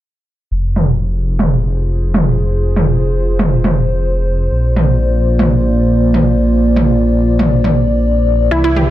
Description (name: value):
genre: melodic techno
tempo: 120 BPM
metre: 4/4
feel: straight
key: F dorian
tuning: A4 = 441 Hz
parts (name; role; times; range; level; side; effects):
- dark analog pad; sustained chords; 0.5-8.9 s; Bb3 to E5; -16 LUFS; equal; chorus
- swelling detuned saw bass; bass; 0.5-8.9 s; F1 to C2; -15 LUFS; equal; none
- electronic toms; drums; 0.8-8.9 s; none; -15 LUFS; right 1 dB; low-pass filter on toms, low-pass filter on room
- fat analog lead; melody; 8.5-8.9 s; E4; -15 LUFS; right 2 dB; chorus
- wide unison pluck; arpeggios; 8.5-8.9 s; E4 to G4; -17 LUFS; right 1 dB; vintage 12-bit sampler grit
room: moderate recital hall reverb, RT60 1.6 s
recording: none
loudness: -11 LUFS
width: side -14 dB against mid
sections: 0.5-8.9 A section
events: filter sweep on drum 0.5-8.9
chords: 0.5 Fm; 4.5 Bb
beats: | 0.51 1.01 1.51 2.01 | 2.51 3.01 3.51 4.01 | 4.51 5.01 5.51 6.01 | 6.51 7.01 7.51 8.01 | 8.51